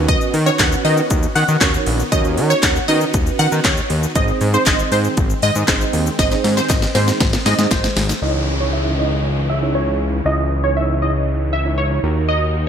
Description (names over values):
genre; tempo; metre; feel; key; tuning
dance-pop; 118 BPM; 4/4; straight; C# dorian; A4 = 439 Hz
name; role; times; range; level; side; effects
mellow tine electric piano; accompaniment; 0.0-12.5 s; B#3 to E5; -23 LUFS; right 7 dB; ensemble chorus, sidechain pumping, low-pass filter
supersaw chords; sustained chords; 0.0-12.7 s; C#3 to A#4; -28 LUFS; left 1 dB; sidechain pumping, low-pass filter
fat analog bass; bass; 0.0-12.7 s; G#1 to D#3; -19 LUFS; left 1 dB; sidechain pumping
wide unison pluck; melody; 0.1-12.4 s; B#4 to F#5; -21 LUFS; equal; phaser, sidechain pumping, low-pass filter
house drum kit; drums; 0.1-8.2 s; handclaps, hi-hat, kick drum, shaker, snare drum; -18 LUFS; left 1 dB; none
group handclap; percussion; 0.6-7.8 s; none; barely audible; none; none
downlifter; sound effects; 8.2-12.3 s; none; -29 LUFS; left 1 dB; none
room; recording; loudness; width
light reverb; bright 1980s-style digital production; -14 LUFS; side -8 dB against mid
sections
0.0-8.2 A section; 8.2-12.7 B section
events
drop 0.0-8.2; drum fill 6.2-8.2; filter sweep 8.2-12.7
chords
0.0 Badd9; 4.2 G#; 8.2 C#madd9; 12.0 D#m